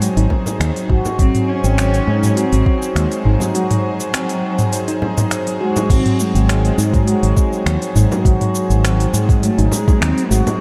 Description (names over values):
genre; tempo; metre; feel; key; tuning
organic downtempo; 102 BPM; 4/4; straight; unclear; A4 = 444 Hz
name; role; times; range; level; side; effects
dark studio string section; sustained chords; 0.0-10.6 s; F#3 to B#4; -28 LUFS; equal; sidechain pumping
handpan; arpeggios; 0.0-10.5 s; F#3 to F#4; -24 LUFS; equal; analog delay
fretless electric bass; bass; 0.0-10.4 s; G#1 to G#2; -18 LUFS; equal; sidechain pumping
organic electronic drum kit; drums; 0.0-10.6 s; crash cymbal, finger snaps, hi-hat, shaker, toms; -24 LUFS; equal; none
electronic kick drum; drums; 0.3-10.0 s; none; -17 LUFS; equal; overdrive
frame drum; percussion; 0.3-10.6 s; none; -29 LUFS; equal; none
dark cello; melody; 1.2-10.6 s; E3 to C#4; -25 LUFS; equal; tape echo
room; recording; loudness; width
moderate cathedral reverb, RT60 5.3 s; dreamy mix soaked in reverb; -16 LUFS; mono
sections
0.0-5.9 A section; 5.9-10.6 B section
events
break 3.5-5.9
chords
0.0 G#7